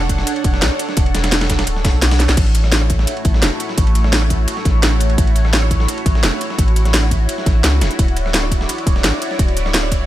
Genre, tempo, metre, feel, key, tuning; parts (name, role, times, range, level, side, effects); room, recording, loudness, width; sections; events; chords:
liquid drum and bass; 171 BPM; 4/4; straight; A major; A4 = 440 Hz
lush unison pad; sustained chords; 0.0-10.1 s; A3 to F#5; -23 LUFS; right 1 dB; chorus, phaser
saturated sub bass; bass; 0.0-10.1 s; D1 to C#2; -16 LUFS; equal
drum and bass drum kit; drums; 0.0-10.0 s; crash cymbal, hi-hat, rim click, snare drum; -20 LUFS; equal; small room ambience
dusty soul sampler-style drum kit; drums; 0.1-10.0 s; hi-hat, ride cymbal, snare drum; -24 LUFS; right 1 dB; overdrive, high-pass filter on cymbals, small room ambience, high-pass filter on snare, high-pass filter on hats, high-pass filter on room
electronic kick drum; drums; 0.1-10.0 s; -17 LUFS; equal; small room ambience
little or no reverb; -13 LUFS; side -14 dB against mid
0.0-2.4 A section; 2.4-10.1 A section
drop 0.0-2.4, 2.4-10.1; drum fill 2.2
0.0 E13sus4; 2.4 A6; 8.0 Dmaj9